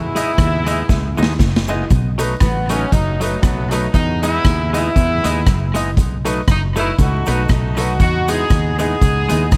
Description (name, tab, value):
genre	ska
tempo	118 BPM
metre	4/4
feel	swing 56% on 8ths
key	E major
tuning	A4 = 440 Hz
part	warm horn section	melody	0.0-9.6 s	F#3 to G#4	-23 LUFS	equal	analog delay
part	semi-hollow electric guitar	riff	0.0-9.6 s	F#2 to E3	-30 LUFS	equal	none
part	fingered electric bass	bass	0.0-9.6 s	F#1 to E2	-23 LUFS	equal	none
part	semi-hollow electric guitar	accompaniment	0.2-9.6 s	F#3 to D#4	-28 LUFS	equal	analog delay
part	warm upright piano	stabs	0.2-9.4 s	D#4 to D#5	-28 LUFS	equal	none
part	street-band drum kit	drums	0.2-9.6 s	hi-hat, kick drum, rim click, snare drum	-20 LUFS	equal	none
part	cabasa	percussion	0.2-9.6 s	none	-41 LUFS	equal	none
room	light reverb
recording	vinyl crackle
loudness	-17 LUFS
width	mono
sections	0.0-1.9 A section; 1.9-9.6 A section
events	drum fill 0.9-1.9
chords	0.0 Emaj7; 1.9 B7; 3.9 Emaj7; 6.0 B7; 8.0 Emaj7